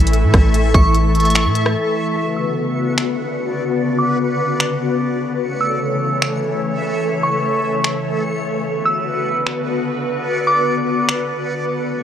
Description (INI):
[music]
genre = hip hop, atmospheric cloud-rap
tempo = 148 BPM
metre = 4/4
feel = half-time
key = B minor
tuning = A4 = 437 Hz
[part]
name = glassy FM pad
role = sustained chords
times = 0.0-12.0 s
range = C#3 to C#5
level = -19 LUFS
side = left 2 dB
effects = ensemble chorus, built-in reverb, sidechain pumping, low-pass filter
[part]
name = soft 808-style bass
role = bass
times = 0.0-1.8 s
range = A1 to A2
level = -16 LUFS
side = equal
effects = none
[part]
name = trap drum kit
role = drums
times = 0.0-11.2 s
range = finger snaps, hi-hat, kick drum, rim click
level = -16 LUFS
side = equal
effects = none
[part]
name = backwards swelling texture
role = texture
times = 0.0-12.0 s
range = A4 to C#7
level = -26 LUFS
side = right 1 dB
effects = built-in reverb
[part]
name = glassy synth bell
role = melody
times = 0.7-11.0 s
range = C#6 to E6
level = -22 LUFS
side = equal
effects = chorus, low-pass filter, tape echo
[sound]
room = light reverb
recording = worn, warbling old tape, cassette tape, warbly pitch drift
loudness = -16 LUFS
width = side -9 dB against mid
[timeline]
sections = 0.0-2.2 A section; 2.2-12.0 B section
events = break 1.8-2.2; filter sweep 2.2-12.0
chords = 0.0 A; 2.2 Bmadd9; 5.4 A; 8.7 Bmadd9